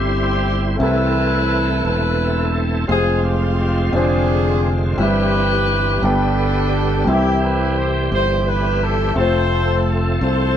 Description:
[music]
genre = gospel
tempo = 57 BPM (dotted quarters)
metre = 6/8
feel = straight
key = C major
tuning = A4 = 440 Hz
[part]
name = warm horn section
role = melody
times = 0.0-10.6 s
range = C4 to C5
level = -21 LUFS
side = left 1 dB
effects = none
[part]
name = warm baby grand piano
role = accompaniment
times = 0.0-10.6 s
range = G2 to E5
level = -22 LUFS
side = left 1 dB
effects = none
[part]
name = bright tonewheel organ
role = sustained chords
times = 0.0-10.6 s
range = D3 to C5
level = -23 LUFS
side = right 1 dB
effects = fast rotary speaker, overdrive, chorus vibrato
[part]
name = modern bright fingered electric bass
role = bass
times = 0.0-10.6 s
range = E1 to C2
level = -19 LUFS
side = equal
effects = none
[sound]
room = moderate studio reverb, RT60 0.7 s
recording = band playing live in one room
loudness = -15 LUFS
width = side -9 dB against mid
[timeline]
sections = 0.0-10.6 A section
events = none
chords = 0.0 C; 0.8 Am/C; 2.9 Fm; 3.9 Fm6; 5.0 C/G; 6.0 G; 7.1 C; 9.2 F

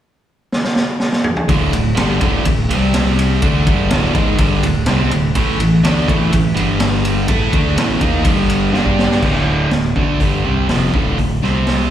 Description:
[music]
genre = classic rock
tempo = 124 BPM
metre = 4/4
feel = straight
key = unclear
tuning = A4 = 440 Hz
[part]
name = raw garage drum kit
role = drums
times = 0.5-11.8 s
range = crash cymbal, hi-hat, kick drum, ride cymbal, snare drum, toms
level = -18 LUFS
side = equal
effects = none
[part]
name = distorted electric guitar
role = riff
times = 1.5-11.9 s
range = D2 to A4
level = -18 LUFS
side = right 7 dB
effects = overdrive
[part]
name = sludgy distorted guitar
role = riff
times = 1.5-11.9 s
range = D2 to A4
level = -20 LUFS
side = left 8 dB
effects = overdrive
[part]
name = fingered electric bass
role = bass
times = 1.5-11.9 s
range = D1 to A2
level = -19 LUFS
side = equal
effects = none
[sound]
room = small room reverb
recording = live gig heard through the venue's PA, recital hall reverb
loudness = -13 LUFS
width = side -10 dB against mid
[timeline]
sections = 0.0-1.5 A section; 1.5-9.2 B section; 9.2-11.9 C section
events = drum fill 0.5-1.5, 8.8-9.2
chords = 0.0 N.C.; 1.5 D5; 2.7 C5; 3.4 D5; 5.4 A5; 6.6 G5; 7.3 A5; 8.3 G5; 9.2 D5; 11.4 C5

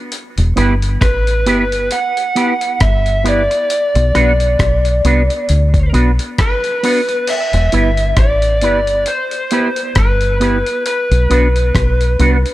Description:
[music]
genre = roots reggae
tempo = 67 BPM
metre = 4/4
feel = swing 57% on 16ths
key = E minor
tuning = A4 = 435 Hz
[part]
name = dusty soul sampler-style drum kit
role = drums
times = 0.1-12.5 s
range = crash cymbal, hi-hat, kick drum, rim click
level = -19 LUFS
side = equal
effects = none
[part]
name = deep dub fingered electric bass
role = bass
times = 0.4-12.4 s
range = E1 to D2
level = -14 LUFS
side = equal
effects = none
[part]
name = electric guitar with an envelope filter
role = accompaniment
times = 0.6-12.4 s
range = B3 to B4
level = -18 LUFS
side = right 2 dB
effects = analog chorus, dub echo
[part]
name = lead guitar through a small cranked amp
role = melody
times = 1.0-12.5 s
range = B4 to F#5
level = -16 LUFS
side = equal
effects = overdrive, dub echo
[sound]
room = light reverb, digital ambience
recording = none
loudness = -12 LUFS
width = side -16 dB against mid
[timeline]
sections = 0.0-7.3 A section; 7.3-12.5 B section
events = none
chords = 0.1 Em; 3.7 Bm; 7.3 Em; 10.8 Bm

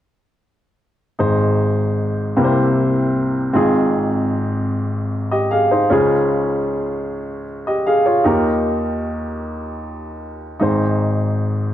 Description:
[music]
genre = gospel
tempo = 51 BPM (dotted quarters)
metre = 6/8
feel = straight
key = Ab major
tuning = A4 = 441 Hz
[part]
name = warm baby grand piano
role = solo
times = 1.2-11.7 s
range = Ab1 to F5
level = -16 LUFS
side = equal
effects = none
[sound]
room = moderate large studio reverb, RT60 1.1 s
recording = dark, warm production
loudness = -16 LUFS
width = side -12 dB against mid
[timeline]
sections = 1.2-11.7 A section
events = none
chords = 1.2 Ab; 2.4 C7; 3.5 Fm/Ab; 5.9 Db; 8.3 Eb; 10.6 Ab

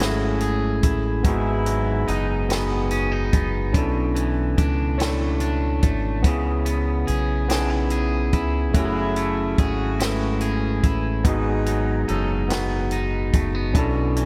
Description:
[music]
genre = slow six-eight R&B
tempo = 48 BPM (dotted quarters)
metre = 6/8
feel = straight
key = F# minor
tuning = A4 = 440 Hz
[part]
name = electric guitar at the edge of break-up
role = second line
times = 0.0-14.3 s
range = G#2 to G#4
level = -31 LUFS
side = equal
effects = delay
[part]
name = overdriven tine electric piano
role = accompaniment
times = 0.0-14.3 s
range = G#3 to C#5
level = -27 LUFS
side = equal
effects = none
[part]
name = warm horn section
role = stabs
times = 0.0-2.4, 8.7-12.4 s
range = B2 to A4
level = -34 LUFS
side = equal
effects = none
[part]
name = deep dub fingered electric bass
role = bass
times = 0.0-14.3 s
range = F#1 to C#2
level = -27 LUFS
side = equal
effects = none
[part]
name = compact cocktail drum kit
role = drums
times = 0.0-14.3 s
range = hi-hat, kick drum, snare drum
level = -25 LUFS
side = equal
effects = none
[sound]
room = moderate lush hall reverb, RT60 2.4 s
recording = bright 1980s-style digital production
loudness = -22 LUFS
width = mono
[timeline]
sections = 0.0-14.3 A section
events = none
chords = 0.0 F#m9; 1.2 G#m7; 3.7 Bm11; 6.2 C#m7; 8.7 F#m9; 11.2 G#m7; 13.7 Bm11

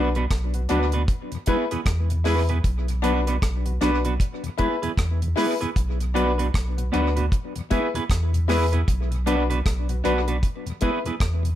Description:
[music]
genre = roots reggae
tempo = 77 BPM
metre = 4/4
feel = swing 61% on 16ths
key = B dorian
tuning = A4 = 440 Hz
[part]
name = clean electric guitar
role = accompaniment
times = 0.0-11.1 s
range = B3 to B4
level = -28 LUFS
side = right 5 dB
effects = dub echo
[part]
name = bright upright piano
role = stabs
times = 0.0-11.0 s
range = D4 to B4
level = -27 LUFS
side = left 6 dB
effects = none
[part]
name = warm sub bass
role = bass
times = 0.0-11.6 s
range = B1 to E2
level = -23 LUFS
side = equal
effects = none
[part]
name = mellow tonewheel organ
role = accompaniment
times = 0.2-11.5 s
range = E2 to E4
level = -31 LUFS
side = left 4 dB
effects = slow rotary speaker, tape echo
[part]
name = deep reggae drum kit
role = drums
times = 0.2-11.6 s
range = hi-hat, kick drum, rim click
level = -26 LUFS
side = equal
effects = tape echo
[sound]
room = light reverb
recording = none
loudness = -21 LUFS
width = side -12 dB against mid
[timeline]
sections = 0.0-11.6 A section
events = none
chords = 0.0 Bm; 1.1 E; 2.6 Bm; 4.2 E; 5.8 Bm; 7.3 E; 8.9 Bm; 10.4 E

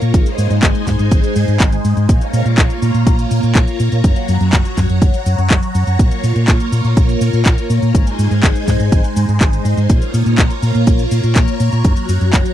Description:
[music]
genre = italo disco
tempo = 123 BPM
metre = 4/4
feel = straight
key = Bb minor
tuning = A4 = 437 Hz
[part]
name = phased string machine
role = sustained chords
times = 0.0-12.5 s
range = Gb3 to Bb5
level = -20 LUFS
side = equal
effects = ensemble chorus, phaser
[part]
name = hollow-body short-scale fingered electric bass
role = bass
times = 0.0-12.4 s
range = Gb1 to Bb2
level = -16 LUFS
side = equal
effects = none
[part]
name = house drum kit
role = drums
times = 0.0-12.5 s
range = cabasa, handclaps, hi-hat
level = -21 LUFS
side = left 1 dB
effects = overdrive
[part]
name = electronic kick drum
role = drums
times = 0.1-12.4 s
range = none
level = -13 LUFS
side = equal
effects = overdrive
[sound]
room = little or no reverb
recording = dry, close 1970s-style studio recording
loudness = -12 LUFS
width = side -12 dB against mid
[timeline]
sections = 0.0-12.5 A section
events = none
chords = 0.1 Ab; 2.1 Bbm; 4.0 Gb; 6.0 Bbm; 7.9 Ab; 9.9 Bbm; 11.8 Gb

